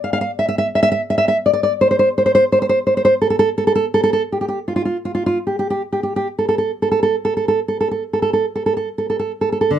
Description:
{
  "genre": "romantic piece for solo classical guitar",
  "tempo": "66-86 BPM",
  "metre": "4/4",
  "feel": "rubato",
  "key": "unclear",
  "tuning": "A4 = 442 Hz",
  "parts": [
    { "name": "nylon-string guitar", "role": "solo", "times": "0.0-9.8 s", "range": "D3 to F5", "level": "-15 LUFS", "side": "right 1 dB", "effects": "none" }
  ],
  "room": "light reverb",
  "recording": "none",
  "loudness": "-15 LUFS",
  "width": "side -10 dB against mid",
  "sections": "0.0-9.7 A section",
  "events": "none",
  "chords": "none",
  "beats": "| 0.30 1.00 1.72 2.44 | 3.13 3.85 4.58 5.38 | 6.26 7.16 8.02 8.88 | 9.72"
}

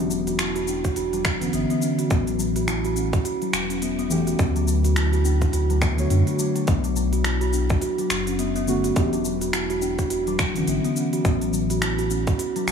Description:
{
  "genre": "organic downtempo",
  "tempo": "105 BPM",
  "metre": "4/4",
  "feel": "swing 59% on 16ths",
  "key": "unclear",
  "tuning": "A4 = 440 Hz",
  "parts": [
    { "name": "steel tongue drum", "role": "arpeggios", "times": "0.0-12.7 s", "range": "F#3 to F#4", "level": "-24 LUFS", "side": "left 1 dB", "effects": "tape echo" },
    { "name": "warm sub bass", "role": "bass", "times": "0.0-12.7 s", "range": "E1 to F#2", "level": "-25 LUFS", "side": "equal", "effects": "tube saturation, sidechain pumping" },
    { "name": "organic electronic drum kit", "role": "drums", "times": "0.1-12.7 s", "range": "finger snaps, hi-hat, shaker", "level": "-29 LUFS", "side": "left 1 dB", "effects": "overdrive" },
    { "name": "electronic kick drum", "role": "drums", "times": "0.8-12.4 s", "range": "none", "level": "-24 LUFS", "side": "equal", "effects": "overdrive" },
    { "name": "muted felt-like synth keys", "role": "accompaniment", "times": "1.4-11.2 s", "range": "D3 to C#5", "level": "-29 LUFS", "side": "right 1 dB", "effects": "chorus, sidechain pumping, tape echo" }
  ],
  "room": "light reverb",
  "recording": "studio ambience",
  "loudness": "-20 LUFS",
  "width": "side -6 dB against mid",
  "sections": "0.0-12.7 A section",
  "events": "none",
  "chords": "0.0 E7(no3); 2.1 A; 4.4 Dmaj7; 6.7 Bm; 9.0 Em7; 11.2 N.C.",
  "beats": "0.39 0.96 1.53 | 2.11 2.68 3.25 3.82 | 4.39 4.96 5.53 6.11 | 6.68 7.25 7.82 8.39 | 8.96 9.53 10.11 10.68 | 11.25 11.82 12.39"
}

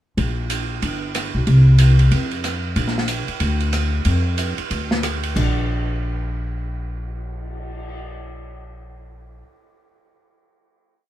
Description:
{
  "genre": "jazz, small-group swing and bop",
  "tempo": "185 BPM",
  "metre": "4/4",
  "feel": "swing 62% on 8ths",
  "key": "Bb major",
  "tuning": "A4 = 442 Hz",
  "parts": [
    { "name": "upright bass", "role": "bass", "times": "0.2-9.4 s", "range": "G1 to F2", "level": "-18 LUFS", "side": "equal", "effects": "none" },
    { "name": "open jazz drum kit", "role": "drums", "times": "0.2-7.9 s", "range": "crash cymbal, cymbal swell, hi-hat, kick drum, ride cymbal, rim click, snare drum", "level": "-26 LUFS", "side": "right 3 dB", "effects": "none" }
  ],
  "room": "moderate club reverb, RT60 0.5 s",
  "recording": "minimal, uncompressed stereo recording",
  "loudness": "-17 LUFS",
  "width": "side -13 dB against mid",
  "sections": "0.2-5.4 A section; 5.4-8.0 final note",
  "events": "none",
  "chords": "none",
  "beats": "| 0.18 0.50 0.82 1.15 | 1.47 1.79 2.12 2.44 | 2.76 3.09 3.41 3.74 | 4.06 4.39 4.71 5.04 | 5.36 5.69 6.01 6.34 | 6.66 6.99 7.31 7.63"
}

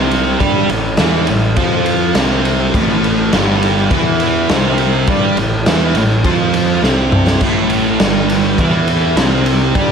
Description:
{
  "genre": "quiet-loud alternative rock",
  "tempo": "103 BPM",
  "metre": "4/4",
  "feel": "straight",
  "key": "A minor",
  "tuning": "A4 = 441 Hz",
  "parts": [
    { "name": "thick fuzz guitar", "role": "riff", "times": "0.0-9.9 s", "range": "G2 to G4", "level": "-14 LUFS", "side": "right 1 dB", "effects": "distortion" },
    { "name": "fuzz picked electric bass", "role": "bass", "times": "0.0-9.9 s", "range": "G1 to G2", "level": "-19 LUFS", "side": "left 1 dB", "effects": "overdrive" },
    { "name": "raw garage drum kit", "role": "drums", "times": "0.1-9.9 s", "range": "crash cymbal, kick drum, ride cymbal, snare drum, toms", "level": "-16 LUFS", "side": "equal", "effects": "none" }
  ],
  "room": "moderate lush hall reverb, RT60 2.0 s, studio reverb",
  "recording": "big arena sound",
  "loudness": "-11 LUFS",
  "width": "side -6 dB against mid",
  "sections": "0.0-9.9 A section",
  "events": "drum fill 6.8-7.4",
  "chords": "0.0 Am",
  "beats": "| 0.40 0.99 1.57 2.15 | 2.74 3.32 3.90 4.49 | 5.07 5.66 6.24 6.83 | 7.41 8.00 8.58 9.17 | 9.75"
}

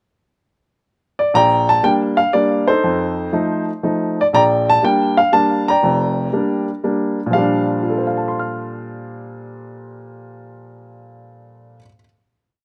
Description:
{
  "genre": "jazz",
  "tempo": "121 BPM",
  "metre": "3/4",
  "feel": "swing 69% on 8ths",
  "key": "Bb major",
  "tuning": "A4 = 440 Hz",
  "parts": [
    { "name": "warm baby grand piano", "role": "solo", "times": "1.2-12.0 s", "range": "F1 to F6", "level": "-18 LUFS", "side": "equal", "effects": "none" }
  ],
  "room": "little or no reverb",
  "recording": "recorded outdoors, with no room sound",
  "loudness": "-17 LUFS",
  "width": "mono",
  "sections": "0.0-1.3 pickup bar; 1.3-7.3 A section; 7.3-10.3 final chord",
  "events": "none",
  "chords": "0.0 N.C.; 1.3 Bb6; 2.8 F7; 4.3 Bb6",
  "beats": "0.33 0.83 | 1.33 1.84 2.34 | 2.84 3.34 3.84 | 4.34 4.83 5.33 | 5.83 6.33 6.82 | 7.32 7.81 8.31 | 8.80 9.30 9.79"
}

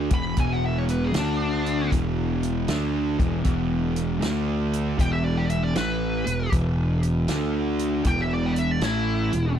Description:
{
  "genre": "blues rock power trio and southern rock",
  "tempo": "78 BPM",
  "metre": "4/4",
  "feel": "swing 66% on 8ths",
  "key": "unclear",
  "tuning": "A4 = 441 Hz",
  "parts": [
    { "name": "fuzz guitar", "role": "riff", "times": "0.0-9.5 s", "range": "E2 to D4", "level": "-25 LUFS", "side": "equal", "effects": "distortion" },
    { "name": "fuzz fingered electric bass", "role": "bass", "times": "0.0-9.6 s", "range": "E1 to D2", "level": "-27 LUFS", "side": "equal", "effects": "overdrive" },
    { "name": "smooth overdriven lead guitar", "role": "melody", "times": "0.1-9.6 s", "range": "D4 to B5", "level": "-30 LUFS", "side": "equal", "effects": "wah" },
    { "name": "vintage drum kit", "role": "drums", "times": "0.1-9.4 s", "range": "hi-hat, kick drum, snare drum", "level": "-26 LUFS", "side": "equal", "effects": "none" }
  ],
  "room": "little or no reverb",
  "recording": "dry, close 1970s-style studio recording",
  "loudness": "-22 LUFS",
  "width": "side -9 dB against mid",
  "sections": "0.0-9.6 A section",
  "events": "none",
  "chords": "0.0 E5; 1.1 D5; 1.9 E5; 4.2 D5; 5.0 E5; 7.3 D5; 8.1 E5",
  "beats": "| 0.37 1.15 1.92 2.69 | 3.45 4.22 4.99 5.76 | 6.53 7.29 8.06 8.83"
}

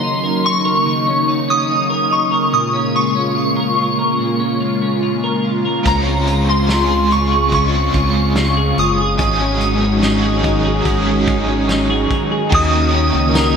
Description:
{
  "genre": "dream pop",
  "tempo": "72 BPM",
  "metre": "4/4",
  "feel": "straight",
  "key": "Eb dorian",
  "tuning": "A4 = 440 Hz",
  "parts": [
    { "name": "shimmering bell with halo", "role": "melody", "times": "0.0-13.6 s", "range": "Bb5 to Eb6", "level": "-18 LUFS", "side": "equal", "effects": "ensemble chorus, phaser, digital delay" },
    { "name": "string machine, violas", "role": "sustained chords", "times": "0.0-13.6 s", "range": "Db3 to Gb4", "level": "-19 LUFS", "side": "equal", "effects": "ensemble chorus" },
    { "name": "twelve-string electric guitar", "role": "arpeggios", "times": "0.0-13.6 s", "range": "Ab2 to Bb4", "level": "-21 LUFS", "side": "left 2 dB", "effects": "analog chorus, digital delay" },
    { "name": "cranked stack guitar", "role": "accompaniment", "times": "5.8-13.6 s", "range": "Ab2 to C5", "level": "-22 LUFS", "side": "right 2 dB", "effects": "overdrive, tremolo, analog chorus" },
    { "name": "round analog bass", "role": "bass", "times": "5.9-13.6 s", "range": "Gb1 to Eb2", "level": "-20 LUFS", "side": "equal", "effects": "none" },
    { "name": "loose indie drum kit", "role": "drums", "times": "5.9-13.6 s", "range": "crash cymbal, hi-hat, kick drum, snare drum, tambourine", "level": "-22 LUFS", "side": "equal", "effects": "gated reverb" }
  ],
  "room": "wet lush hall reverb, RT60 2.2 s",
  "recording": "bright 1980s-style digital production",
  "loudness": "-13 LUFS",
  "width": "side -6 dB against mid",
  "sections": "0.0-12.5 A section; 12.5-13.6 B section",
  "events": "none",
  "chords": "0.0 Ebm7; 2.5 Bbm7; 5.9 Dbmaj7; 9.2 Ab7sus4; 12.5 Ebm7",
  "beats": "0.02 0.86 1.69 | 2.52 3.36 4.19 5.02 | 5.86 6.69 7.52 8.36 | 9.19 10.02 10.86 11.69 | 12.52 13.36"
}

